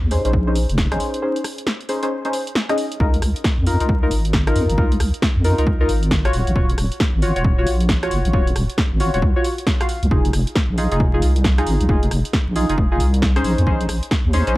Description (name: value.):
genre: UK garage, two-step garage.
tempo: 135 BPM.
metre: 4/4.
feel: swing 63% on 16ths.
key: unclear.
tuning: A4 = 440 Hz.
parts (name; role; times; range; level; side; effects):
deep soft wobble bass; bass; 0.0-14.6 s; Eb1 to F2; -19 LUFS; equal; chorus, tube saturation.
deep mellow chord stab; stabs; 0.1-14.5 s; Db4 to F5; -23 LUFS; left 1 dB; chorus, digital delay.
punchy analog drum machine; drums; 0.1-14.5 s; hi-hat, rim click, snare drum; -25 LUFS; equal; none.
electronic kick drum; drums; 0.3-14.2 s; none; -20 LUFS; equal; overdrive.
room: little or no reverb.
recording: dark, warm production, vinyl crackle.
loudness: -16 LUFS.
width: side -18 dB against mid.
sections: 0.0-3.0 A section; 3.0-14.6 B section.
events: break 1.2-3.0; drop 3.0-14.6.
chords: 0.0 Bbm11; 3.0 Db69; 6.3 Ebm9; 10.1 Fm7; 13.4 Bbm11.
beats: 0.33 0.78 | 1.22 1.67 2.11 2.56 | 3.00 3.44 3.89 4.33 | 4.78 5.22 5.67 6.11 | 6.56 7.00 7.45 7.89 | 8.33 8.78 9.22 9.67 | 10.11 10.56 11.00 11.45 | 11.89 12.33 12.78 13.22 | 13.67 14.11 14.56.